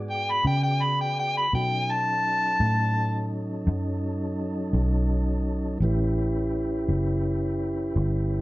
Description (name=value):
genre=slow blues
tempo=56 BPM (dotted quarters)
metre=12/8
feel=straight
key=unclear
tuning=A4 = 441 Hz
part: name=mellow tonewheel organ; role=sustained chords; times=0.0-8.4 s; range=F#3 to D5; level=-29 LUFS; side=equal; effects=slow rotary speaker
part: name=vintage muted fingered electric bass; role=bass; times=0.0-8.4 s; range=F#1 to C#3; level=-26 LUFS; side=equal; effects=none
part: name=overdriven harmonica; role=melody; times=0.1-3.3 s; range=G5 to B5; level=-24 LUFS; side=equal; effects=slapback echo
room=moderate studio reverb, RT60 0.6 s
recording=band playing live in one room, nothing above 7.7 kHz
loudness=-23 LUFS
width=side -19 dB against mid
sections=0.0-8.4 A section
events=harmonica solo 0.0-8.4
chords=0.0 E7 (rootless); 1.5 B7; 5.8 A7